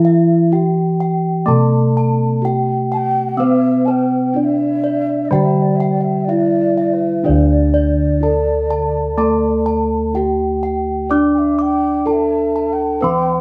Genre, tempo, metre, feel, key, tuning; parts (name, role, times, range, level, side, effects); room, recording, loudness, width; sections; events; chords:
Javanese gamelan; 62 BPM; 4/4; straight; D slendro; A4 = 439 Hz
gamelan-type bronze metallophone; melody; 0.0-13.4 s; C4-45c to D5; -20 LUFS; equal
breathy reedy low xiao; second line; 0.0-13.4 s; A4+28c to A5-34c; -26 LUFS; equal
gamelan-type bronze metallophone; accompaniment; 0.0-13.4 s; D3 to D4; -22 LUFS; equal
gamelan-type bronze metallophone; arpeggios; 0.0-13.4 s; C5-45c to D6; -26 LUFS; equal
gamelan-type bossed gongs; bass; 0.0-13.4 s; D2 to D5; -23 LUFS; equal
moderate large studio reverb, RT60 0.9 s; band playing live in one room; -16 LUFS; mono
0.0-13.4 A section